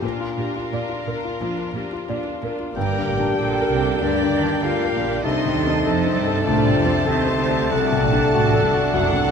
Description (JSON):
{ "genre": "classical, romantic movement for piano and orchestra", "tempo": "85-101 BPM", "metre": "4/4", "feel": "rubato", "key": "G minor", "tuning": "A4 = 438 Hz", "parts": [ { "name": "clear grand piano", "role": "melody", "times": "0.0-9.3 s", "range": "C2 to D5", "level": "-24 LUFS", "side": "left 4 dB", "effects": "none" }, { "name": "rich symphonic violin section", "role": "melody", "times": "0.0-9.3 s", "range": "Bb4 to A5", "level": "-32 LUFS", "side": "left 2 dB", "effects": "none" }, { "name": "clear studio violin section", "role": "second line", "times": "0.0-9.3 s", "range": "F4 to C6", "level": "-32 LUFS", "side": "left 3 dB", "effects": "none" }, { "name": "rich studio viola section", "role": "accompaniment", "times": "0.0-9.3 s", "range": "Bb3 to Bb4", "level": "-29 LUFS", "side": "right 4 dB", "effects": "none" }, { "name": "clear symphonic cello section", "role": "bass", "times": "0.0-9.3 s", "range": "F#2 to A3", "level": "-27 LUFS", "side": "right 8 dB", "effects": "none" }, { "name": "clear oboe", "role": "second line", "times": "2.8-9.3 s", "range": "F#5 to A5", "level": "-30 LUFS", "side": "right 3 dB", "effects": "none" }, { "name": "mellow clarinet", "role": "second line", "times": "2.8-9.3 s", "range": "C5 to D5", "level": "-31 LUFS", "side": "right 4 dB", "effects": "none" }, { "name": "silver concert flute", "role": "second line", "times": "2.8-9.3 s", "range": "C5 to A5", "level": "-30 LUFS", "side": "left 1 dB", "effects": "none" }, { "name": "warm bassoon", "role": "accompaniment", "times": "2.8-9.3 s", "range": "A3 to Bb3", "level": "-30 LUFS", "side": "right 6 dB", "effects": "none" }, { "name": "mellow French horn section", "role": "sustained chords", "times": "2.8-9.3 s", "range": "C4 to A4", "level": "-23 LUFS", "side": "left 4 dB", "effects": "none" }, { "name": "warm symphonic double bass section", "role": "bass", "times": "2.8-9.3 s", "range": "F#1 to A2", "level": "-28 LUFS", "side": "right 7 dB", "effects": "none" } ], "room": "moderate concert hall reverb, RT60 1.8 s", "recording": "close, detailed microphones", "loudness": "-18 LUFS", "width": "side -6 dB against mid", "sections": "0.0-2.8 A section; 2.8-9.3 B section", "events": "none", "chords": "0.0 Bb; 2.8 Gm; 5.2 Adim/C; 7.7 D7", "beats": "| 0.03 0.73 1.41 2.08 | 2.76 3.40 4.01 4.63 | 5.24 5.86 6.47 7.07 | 7.72 8.34 8.94" }